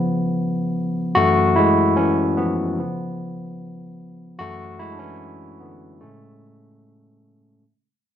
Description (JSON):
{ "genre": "soul", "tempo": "74 BPM", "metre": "4/4", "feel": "straight", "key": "A major", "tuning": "A4 = 440 Hz", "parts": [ { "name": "overdriven tine electric piano", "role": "solo", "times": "0.0-7.7 s", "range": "F#2 to F#4", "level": "-19 LUFS", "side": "left 1 dB", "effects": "none" } ], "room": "moderate studio reverb, RT60 0.7 s", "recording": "band playing live in one room", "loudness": "-17 LUFS", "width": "side -9 dB against mid", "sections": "0.0-7.6 A section", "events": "fade-out 0.0-7.6; tine electric piano solo 0.0-7.6", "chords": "0.0 C#7; 1.2 F#m7; 2.8 C#7; 4.4 F#m7; 6.0 Amaj7" }